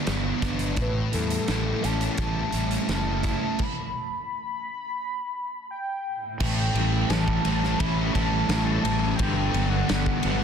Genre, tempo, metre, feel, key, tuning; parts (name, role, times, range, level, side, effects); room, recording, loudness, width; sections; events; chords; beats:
rock, shoegaze and dream pop; 86 BPM; 4/4; straight; A mixolydian; A4 = 440 Hz
warm velvety synth lead; melody; 0.0-10.4 s; A4 to B5; -31 LUFS; equal; chorus, tape echo
twelve-string electric guitar; arpeggios; 0.0-10.4 s; E3 to G4; -35 LUFS; right 6 dB; lush chorus, tape echo
overdriven semi-hollow guitar; riff; 0.0-10.4 s; G2 to E4; -32 LUFS; right 8 dB; reverse reverb
thick fuzz guitar; riff; 0.0-10.4 s; G2 to E4; -30 LUFS; left 9 dB; distortion, analog chorus
fuzz fingered electric bass; bass; 0.1-10.4 s; F#1 to E2; -28 LUFS; equal; overdrive
big rock drum kit; drums; 0.1-10.4 s; crash cymbal, hi-hat, kick drum, ride cymbal, snare drum; -29 LUFS; equal
cranked stack guitar; riff; 6.4-10.4 s; G2 to A3; -32 LUFS; right 1 dB; overdrive
light reverb, small room ambience; dense, heavily limited modern master; -23 LUFS; side -7 dB against mid
0.0-6.4 A section; 6.4-10.4 B section
stop 3.6-6.4
0.0 Gmaj7; 0.8 A7; 3.6 N.C.; 6.4 A7; 9.2 Gmaj7
0.09 | 0.79 1.49 2.19 2.89 | 3.60 4.30 5.00 5.70 | 6.40 7.10 7.80 8.50 | 9.19 9.89